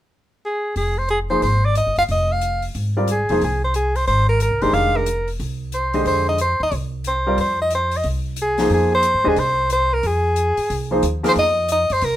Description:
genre	modal jazz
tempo	181 BPM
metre	4/4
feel	swing 64% on 8ths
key	F dorian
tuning	A4 = 440 Hz
part	warm soprano saxophone	melody	0.5-12.2 s	Ab4 to F5	-19 LUFS	equal	none
part	upright bass	bass	0.8-12.2 s	E1 to G2	-22 LUFS	equal	none
part	open jazz drum kit	drums	0.8-12.1 s	hi-hat, snare drum	-35 LUFS	left 6 dB	none
part	clear grand piano	accompaniment	1.3-11.3 s	D3 to Eb5	-20 LUFS	equal	none
room	light reverb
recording	minimal, uncompressed stereo recording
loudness	-17 LUFS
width	side -12 dB against mid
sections	0.8-11.4 A section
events	none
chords	0.0 N.C.; 0.8 Fm9; 11.4 F7(no3)

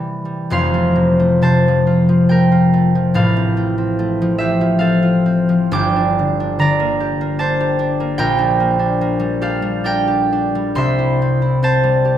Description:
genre	classical, solo harp piece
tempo	53-76 BPM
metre	3/4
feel	rubato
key	F major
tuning	A4 = 441 Hz
part	concert harp	solo	0.0-12.2 s	F1 to D6	-14 LUFS	equal	none
room	wet recital hall reverb, RT60 1.8 s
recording	none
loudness	-14 LUFS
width	side -10 dB against mid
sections	0.5-12.2 A section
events	none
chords	0.0 C; 0.5 F; 3.1 F/A; 5.7 Gm; 8.2 Gm/Bb; 10.8 C

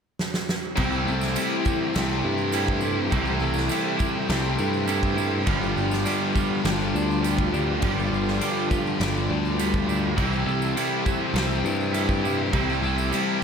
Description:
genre	rock, shoegaze and dream pop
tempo	102 BPM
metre	4/4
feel	straight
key	C major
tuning	A4 = 440 Hz
part	huge arena drum kit	drums	0.2-13.3 s	crash cymbal, kick drum, snare drum	-29 LUFS	equal	none
part	string machine, full ensemble	sustained chords	0.8-13.4 s	E4 to D6	-33 LUFS	right 1 dB	ensemble chorus
part	twelve-string electric guitar	arpeggios	0.8-13.4 s	E3 to E4	-33 LUFS	left 2 dB	lush chorus, analog delay
part	biting overdriven guitar	riff	0.8-13.4 s	G2 to G4	-31 LUFS	right 13 dB	reverse reverb
part	thick fuzz guitar	riff	0.8-13.4 s	G2 to C4	-30 LUFS	left 10 dB	distortion, lush chorus
part	tight distorted guitar	riff	0.8-13.4 s	G2 to C4	-28 LUFS	equal	distortion
part	modern bright picked electric bass	bass	0.8-13.1 s	G1 to G2	-27 LUFS	equal	none
part	tambourine	percussion	0.8-13.3 s	none	-42 LUFS	right 15 dB	none
room	light reverb, small room ambience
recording	none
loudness	-22 LUFS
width	side -6 dB against mid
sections	0.8-13.4 A section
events	drum fill 0.2-0.8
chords	0.0 N.C.; 0.8 C6; 5.5 G7sus4; 10.2 C6

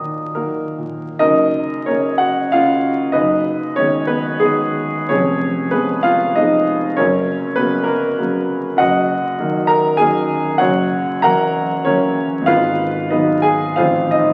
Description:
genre	classical, romantic character piece for solo piano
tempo	66-103 BPM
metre	3/4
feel	rubato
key	F# major, Eb minor from 8.8 s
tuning	A4 = 439 Hz
part	warm grand piano	solo	0.0-14.3 s	E#1 to Eb6	-17 LUFS	equal	none
room	wet recital hall reverb, RT60 1.6 s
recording	very old 78 rpm record, vinyl crackle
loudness	-17 LUFS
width	mono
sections	0.0-1.2 A section; 1.2-14.3 B section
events	none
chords	0.0 Ebm; 1.2 F#; 3.2 G#m7/F#; 5.1 C#7/E#; 7.0 F#; 8.8 Ebm/Gb; 10.6 Gb7; 12.5 Abm7; 13.8 F7/A

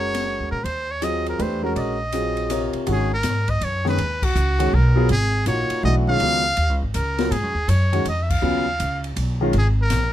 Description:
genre	modal jazz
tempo	162 BPM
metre	3/4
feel	swing 65% on 8ths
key	G# dorian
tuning	A4 = 440 Hz
part	trumpet with metal mute	melody	0.0-10.1 s	F#4 to E#5	-24 LUFS	right 1 dB	none
part	clear concert grand piano	accompaniment	0.0-9.5 s	C3 to Db5	-24 LUFS	left 1 dB	none
part	upright bass	bass	0.0-10.1 s	Gb1 to Bb2	-22 LUFS	equal	none
part	open jazz drum kit	drums	0.1-10.0 s	crash cymbal, hi-hat, kick drum, ride cymbal, snare drum	-31 LUFS	left 1 dB	none
room	light reverb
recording	close, detailed microphones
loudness	-19 LUFS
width	side -12 dB against mid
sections	0.0-2.9 A section; 2.9-10.1 B section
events	band accent 4.2, 8.2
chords	0.0 Ebm9; 2.9 G#m9; 5.1 C#add9/G#; 7.3 G#m7; 9.5 G#sus2

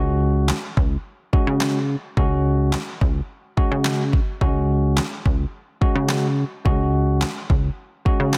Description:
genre	dance-pop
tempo	107 BPM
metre	4/4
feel	straight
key	unclear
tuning	A4 = 443 Hz
part	bright tine electric piano	accompaniment	0.0-8.4 s	G#3 to F#4	-27 LUFS	equal	sidechain pumping
part	plucky analog bass	bass	0.0-8.4 s	C#2 to C#3	-23 LUFS	equal	sidechain pumping
part	smooth R&B drum kit	drums	0.5-8.4 s	handclaps, kick drum, snare drum	-24 LUFS	equal	none
room	light reverb, digital ambience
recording	dense, heavily limited modern master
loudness	-21 LUFS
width	mono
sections	0.0-8.4 A section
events	none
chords	0.0 C#sus4

